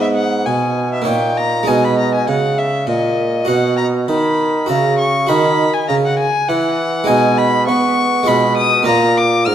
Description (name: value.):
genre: classical, baroque-style sonata movement with continuo.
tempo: 100 BPM.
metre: 3/4.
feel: straight.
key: unclear.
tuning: A4 = 440 Hz.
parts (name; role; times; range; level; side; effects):
warm violin; melody; 0.0-9.5 s; D#5 to F6; -18 LUFS; left 3 dB; none.
harpsichord; accompaniment; 0.0-9.5 s; G#2 to E5; -18 LUFS; right 2 dB; none.
warm bassoon; bass; 0.0-9.5 s; G#2 to Cb4; -17 LUFS; right 1 dB; none.
room: wet recital hall reverb, RT60 1.8 s.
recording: none.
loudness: -13 LUFS.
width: side -10 dB against mid.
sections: 0.0-9.5 A section.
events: none.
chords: 0.0 G#m; 1.1 D#7/A#; 1.7 G#m/B; 3.5 B; 4.7 F#7/C#; 5.3 C#m11; 7.1 Abm/Cb; 8.3 Fm7b5/Cb; 8.9 Bb.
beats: 0.47 1.08 | 1.69 2.29 2.89 | 3.49 4.10 4.70 | 5.29 5.89 6.49 | 7.09 7.68 8.28 | 8.88 9.48.